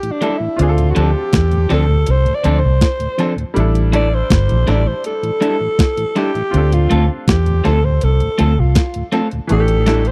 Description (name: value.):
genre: lovers rock reggae.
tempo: 81 BPM.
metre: 4/4.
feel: straight.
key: D minor.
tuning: A4 = 440 Hz.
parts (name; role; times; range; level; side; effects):
raspy alto saxophone; melody; 0.0-10.1 s; D4 to D5; -22 LUFS; equal; tape echo.
clear grand piano; accompaniment; 0.0-10.1 s; E3 to A4; -27 LUFS; equal; none.
mellow tonewheel organ; accompaniment; 0.0-10.0 s; D2 to D4; -28 LUFS; equal; chorus vibrato, slow rotary speaker, tape echo.
crisp 8-bit digital drum machine; drums; 0.0-10.1 s; hi-hat, kick drum, snare drum; -19 LUFS; equal; overdrive, tape echo.
electric guitar through a small old amp; stabs; 0.2-10.0 s; F3 to A4; -21 LUFS; equal; subtle chorus.
vintage muted fingered electric bass; bass; 0.6-10.1 s; G1 to E2; -16 LUFS; equal; none.
room: digital ambience.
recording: dry, close 1970s-style studio recording.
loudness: -15 LUFS.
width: mono.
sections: 0.0-10.1 A section.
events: alto saxophone solo 0.0-10.1.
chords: 0.0 A7sus4; 0.6 Dm7; 3.6 A7sus4; 6.5 Dm7; 9.5 A7sus4.